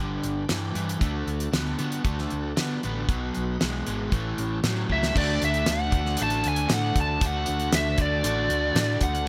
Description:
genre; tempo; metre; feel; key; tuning
classic rock; 116 BPM; 4/4; straight; unclear; A4 = 440 Hz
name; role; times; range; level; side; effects
bright tonewheel organ; sustained chords; 0.0-9.3 s; C#4 to B4; -43 LUFS; equal; none
overdriven electric guitar; riff; 0.0-9.3 s; G2 to F#4; -33 LUFS; equal; none
overdriven semi-hollow guitar; riff; 0.0-9.3 s; G2 to D4; -36 LUFS; equal; none
hollow-body short-scale fingered electric bass; bass; 0.0-9.2 s; G1 to D3; -32 LUFS; equal; none
damped 70s drum kit; drums; 0.2-9.3 s; crash cymbal, hi-hat, kick drum, snare drum; -29 LUFS; equal; none
bluesy overdriven lead guitar; melody; 4.9-9.3 s; D5 to A5; -29 LUFS; equal; distortion
group handclap; percussion; 5.7-8.9 s; none; barely audible; none; none
room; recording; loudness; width
light reverb; none; -26 LUFS; mono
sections
0.0-5.2 A section; 5.2-9.3 B section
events
drum fill 4.9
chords
0.0 G; 1.0 D; 3.1 B; 4.1 A7; 5.2 D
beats
0.49 | 1.01 1.53 2.05 2.57 | 3.09 3.60 4.12 4.64 | 5.15 5.67 6.18 6.70 | 7.21 7.73 8.24 8.75 | 9.27

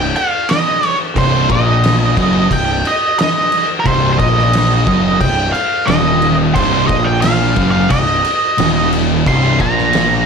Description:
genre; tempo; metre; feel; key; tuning
stoner and doom metal; 89 BPM; 4/4; straight; unclear; A4 = 440 Hz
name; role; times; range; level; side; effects
octave-fuzz lead guitar; melody; 0.0-10.3 s; Bb4 to C6; -16 LUFS; right 2 dB; distortion
thick fuzz guitar; riff; 0.0-10.3 s; C2 to Bb2; -18 LUFS; left 10 dB; distortion
thick fuzz guitar; riff; 0.0-10.3 s; C2 to Bb2; -18 LUFS; right 9 dB; distortion
fuzz fingered electric bass; bass; 0.0-10.2 s; C1 to Bb1; -19 LUFS; equal; overdrive
oversized low-tuned drum kit; drums; 0.2-10.1 s; crash cymbal, kick drum, snare drum; -18 LUFS; equal; none
room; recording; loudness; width
light reverb, studio reverb; none; -11 LUFS; side -6 dB against mid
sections
0.0-10.3 A section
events
none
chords
0.0 Cm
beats
0.49 | 1.16 1.83 2.51 3.18 | 3.86 4.53 5.21 5.88 | 6.56 7.24 7.91 8.59 | 9.26 9.94

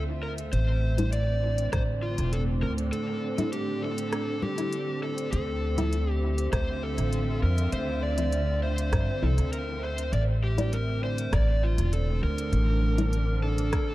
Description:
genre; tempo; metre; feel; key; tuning
ambient dub; 100 BPM; 4/4; straight; D minor; A4 = 436 Hz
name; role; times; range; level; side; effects
dark studio string section; sustained chords; 0.0-13.9 s; A2 to E5; -33 LUFS; right 2 dB; none
upright bass; bass; 0.0-13.7 s; E1 to G2; -26 LUFS; equal; none
overdriven slide guitar; melody; 0.2-13.9 s; F4 to D5; -32 LUFS; left 1 dB; dub echo
organic electronic drum kit; drums; 0.4-13.9 s; congas, hi-hat, rim click; -36 LUFS; left 1 dB; dub echo
filtered dub chord stab; stabs; 1.0-13.1 s; F3 to E4; -37 LUFS; left 2 dB; analog chorus, cassette tape, dub echo
electronic kick drum; drums; 1.7-1.9, 6.5-13.9 s; none; -29 LUFS; equal; overdrive
room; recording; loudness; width
light reverb, digital ambience; none; -25 LUFS; side -16 dB against mid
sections
0.0-13.9 A section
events
filter sweep on synth stab 0.0-13.9; break 2.9-5.3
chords
0.0 Dm7; 0.5 Asus4; 5.3 Dm7; 10.1 Asus4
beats
| 0.53 1.13 1.73 2.33 | 2.93 3.53 4.13 4.73 | 5.33 5.93 6.53 7.13 | 7.73 8.33 8.93 9.53 | 10.13 10.73 11.33 11.93 | 12.53 13.13 13.73

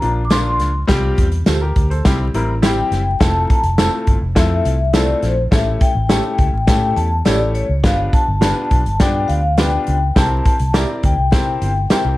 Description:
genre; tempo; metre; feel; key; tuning
uptempo 1960s-style soul; 104 BPM; 4/4; straight; F major; A4 = 440 Hz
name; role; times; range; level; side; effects
vibraphone with soft mallets; melody; 0.0-12.2 s; C5 to D6; -20 LUFS; left 3 dB; plate reverb
clear grand piano; accompaniment; 0.0-12.2 s; F3 to D5; -22 LUFS; left 1 dB; plate reverb
vintage muted fingered electric bass; bass; 0.0-12.2 s; F1 to C3; -18 LUFS; equal; none
natural country drum kit; drums; 0.0-12.0 s; hi-hat, kick drum, snare drum; -16 LUFS; equal; none
mellow electric guitar; stabs; 0.3-12.0 s; E4 to E5; -25 LUFS; right 8 dB; spring reverb, plate reverb
tambourine; percussion; 0.3-12.0 s; none; -34 LUFS; right 10 dB; none
room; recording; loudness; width
light reverb; dark, warm production, vinyl crackle; -14 LUFS; side -17 dB against mid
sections
0.0-3.2 A section; 3.2-12.2 B section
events
none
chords
0.0 Bb; 0.9 Csus4; 2.0 C; 3.2 Fmaj7; 5.5 A7; 7.8 G7; 10.2 C7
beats
0.31 | 0.89 1.47 2.05 2.63 | 3.21 3.79 4.36 4.94 | 5.52 6.10 6.68 7.26 | 7.84 8.42 9.00 9.58 | 10.16 10.74 11.32 11.90

